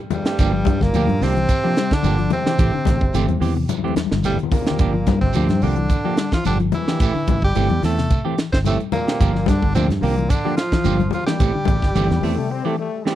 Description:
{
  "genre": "afrobeat",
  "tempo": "109 BPM",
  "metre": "4/4",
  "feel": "straight",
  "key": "G dorian",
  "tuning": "A4 = 440 Hz",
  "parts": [
    { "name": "semi-hollow electric guitar", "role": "stabs", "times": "0.0-13.2 s", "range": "E3 to G4", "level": "-26 LUFS", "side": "right 7 dB", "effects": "none" },
    { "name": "bright tenor saxophone", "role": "melody", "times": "0.1-13.0 s", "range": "G3 to C5", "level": "-25 LUFS", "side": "equal", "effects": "none" },
    { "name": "growling trombone", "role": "second line", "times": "0.1-13.0 s", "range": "G2 to C4", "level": "-30 LUFS", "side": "right 5 dB", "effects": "none" },
    { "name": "tight funk drum kit", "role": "drums", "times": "0.1-13.2 s", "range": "hi-hat, kick drum, snare drum", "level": "-21 LUFS", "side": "right 1 dB", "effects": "none" },
    { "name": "congas", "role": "percussion", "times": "0.1-12.5 s", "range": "none", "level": "-25 LUFS", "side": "left 9 dB", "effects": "none" },
    { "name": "shekere", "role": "percussion", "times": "0.1-12.4 s", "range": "none", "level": "-30 LUFS", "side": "right 4 dB", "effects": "none" },
    { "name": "fingered electric bass", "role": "bass", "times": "0.4-12.4 s", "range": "G1 to G2", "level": "-20 LUFS", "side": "equal", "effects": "none" },
    { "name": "mellow electric guitar", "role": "arpeggios", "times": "0.5-12.9 s", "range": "C3 to G3", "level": "-25 LUFS", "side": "left 7 dB", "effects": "none" },
    { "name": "bright trombone section", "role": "second line", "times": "11.9-13.2 s", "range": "G3 to C4", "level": "-27 LUFS", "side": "left 6 dB", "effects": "none" }
  ],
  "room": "small room ambience",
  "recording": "dry, close 1970s-style studio recording",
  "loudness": "-16 LUFS",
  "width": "side -12 dB against mid",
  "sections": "0.0-13.2 A section",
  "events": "drum fill 3.7-4.8; break 12.5-13.2",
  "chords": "0.4 Gm7; 2.6 Am7; 4.8 Gm7; 7.0 Am7; 9.2 Gm7; 11.4 Am7"
}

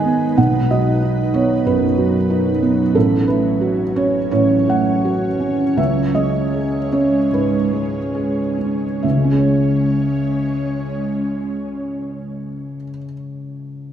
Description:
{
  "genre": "neoclassical piano and strings",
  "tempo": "67-94 BPM",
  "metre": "4/4",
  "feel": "rubato",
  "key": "C# minor",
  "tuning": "A4 = 442 Hz",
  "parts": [
    { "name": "felt-muted upright piano", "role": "accompaniment", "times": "0.0-13.9 s", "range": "A1 to G#5", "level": "-17 LUFS", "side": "right 1 dB", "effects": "none" },
    { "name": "ethereal airy pad", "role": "sustained chords", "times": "0.0-12.8 s", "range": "F#3 to C#5", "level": "-23 LUFS", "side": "equal", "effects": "ensemble chorus, built-in reverb" }
  ],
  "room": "wet recital hall reverb, RT60 1.5 s",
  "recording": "none",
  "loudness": "-15 LUFS",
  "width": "side -9 dB against mid",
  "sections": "0.0-9.0 A section; 9.0-12.6 B section",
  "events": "slowing down 1.7-9.0",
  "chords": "0.4 B; 3.0 F#m/A; 5.8 C#5"
}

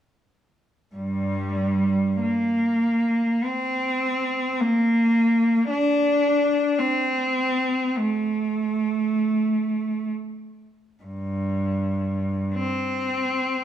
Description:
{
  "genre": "classical, free, expressive piece for unaccompanied cello",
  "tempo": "free time",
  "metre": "none",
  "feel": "none",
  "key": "G minor",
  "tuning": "A4 = 436 Hz",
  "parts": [
    { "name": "clear cello", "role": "solo", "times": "0.9-13.6 s", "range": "G2 to D4", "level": "-21 LUFS", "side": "equal", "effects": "none" }
  ],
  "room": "wet recital hall reverb, RT60 1.6 s",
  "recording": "none",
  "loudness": "-21 LUFS",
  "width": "side -10 dB against mid",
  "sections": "1.0-11.0 A section; 11.0-13.6 B section",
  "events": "none",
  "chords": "none"
}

